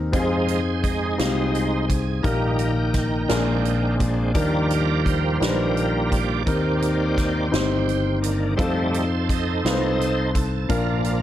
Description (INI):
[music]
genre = slow gospel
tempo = 57 BPM (dotted quarters)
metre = 6/8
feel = straight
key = Eb major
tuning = A4 = 439 Hz
[part]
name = warm grand piano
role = accompaniment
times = 0.0-11.2 s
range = Bb2 to C5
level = -24 LUFS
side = left 3 dB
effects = none
[part]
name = fingered electric bass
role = bass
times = 0.0-11.2 s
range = G1 to F2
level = -25 LUFS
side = equal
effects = none
[part]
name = bright tonewheel organ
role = sustained chords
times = 0.1-11.2 s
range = Eb3 to G5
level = -26 LUFS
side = right 4 dB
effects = slow rotary speaker, chorus vibrato
[part]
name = swinging big-band drum kit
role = drums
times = 0.1-11.2 s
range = hi-hat, kick drum, snare drum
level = -27 LUFS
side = equal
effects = none
[sound]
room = light reverb, studio reverb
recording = none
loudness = -19 LUFS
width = side -12 dB against mid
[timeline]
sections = 0.0-11.2 A section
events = tonewheel organ solo 0.0-11.2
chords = 0.1 Fm7; 2.2 Eb/Bb; 3.3 Bb7; 4.4 Ebmaj7; 6.5 Cm7/Eb; 8.6 F7; 10.7 Bb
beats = | 0.13 1.19 | 2.25 3.30 | 4.36 5.42 | 6.47 7.53 | 8.59 9.64 | 10.70